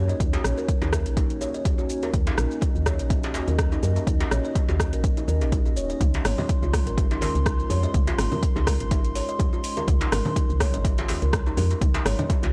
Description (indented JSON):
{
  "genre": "afro house",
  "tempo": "124 BPM",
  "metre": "4/4",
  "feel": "swing 55% on 16ths",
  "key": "Eb dorian",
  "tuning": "A4 = 440 Hz",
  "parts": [
    { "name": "dark analog pad", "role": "sustained chords", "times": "0.0-12.5 s", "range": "Ab3 to C6", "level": "-35 LUFS", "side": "equal", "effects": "subtle chorus, sidechain pumping" },
    { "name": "kalimba", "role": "arpeggios", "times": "0.0-12.5 s", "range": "Eb4 to Eb5", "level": "-35 LUFS", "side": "equal", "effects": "sidechain pumping, analog delay" },
    { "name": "woody FM bass", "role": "bass", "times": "0.0-12.5 s", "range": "Eb1 to Gb2", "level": "-28 LUFS", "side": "equal", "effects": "sidechain pumping" },
    { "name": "deep house drum kit", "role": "drums", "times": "0.1-12.5 s", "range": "hi-hat, rim click, shaker, toms", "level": "-33 LUFS", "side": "equal", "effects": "overdrive" },
    { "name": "djembe", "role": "percussion", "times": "0.1-12.5 s", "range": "none", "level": "-37 LUFS", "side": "equal", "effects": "none" },
    { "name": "electronic kick drum", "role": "drums", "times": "0.2-12.4 s", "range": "none", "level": "-27 LUFS", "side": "equal", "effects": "overdrive" },
    { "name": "congas", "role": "percussion", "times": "6.0-12.3 s", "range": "none", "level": "-35 LUFS", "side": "equal", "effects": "none" }
  ],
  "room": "digital ambience",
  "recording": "dry, gritty hardware recording, cassette tape",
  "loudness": "-24 LUFS",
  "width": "mono",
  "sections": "0.0-12.5 A section",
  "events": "none",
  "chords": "0.0 Ebm7; 6.0 Dbmaj7"
}